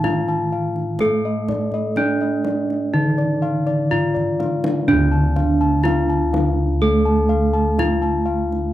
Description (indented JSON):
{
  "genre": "Javanese gamelan",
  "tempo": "62 BPM",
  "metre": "4/4",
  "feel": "straight",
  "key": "unclear",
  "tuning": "A4 = 435 Hz",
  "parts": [
    { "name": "gamelan-type bronze metallophone", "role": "melody", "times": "0.0-8.7 s", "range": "D4 to A4", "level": "-22 LUFS", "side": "equal", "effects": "none" },
    { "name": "gamelan-type bronze metallophone", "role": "accompaniment", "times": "0.0-8.7 s", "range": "D3 to A3", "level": "-24 LUFS", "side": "right 3 dB", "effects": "none" },
    { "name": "gamelan-type bossed gongs", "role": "arpeggios", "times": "0.0-8.5 s", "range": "D5 to A5", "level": "-26 LUFS", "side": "left 3 dB", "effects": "none" },
    { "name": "gamelan-type bossed gongs", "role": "bass", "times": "0.0-8.7 s", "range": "D2 to A4", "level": "-21 LUFS", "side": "equal", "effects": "none" },
    { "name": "kendang", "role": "percussion", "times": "0.0-8.6 s", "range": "none", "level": "-28 LUFS", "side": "equal", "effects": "none" }
  ],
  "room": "little or no reverb",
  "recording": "dry, close 1970s-style studio recording",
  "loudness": "-17 LUFS",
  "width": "side -13 dB against mid",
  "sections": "0.0-4.9 A section; 4.9-8.7 A section",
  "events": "drum fill 3.9-4.9",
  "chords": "none"
}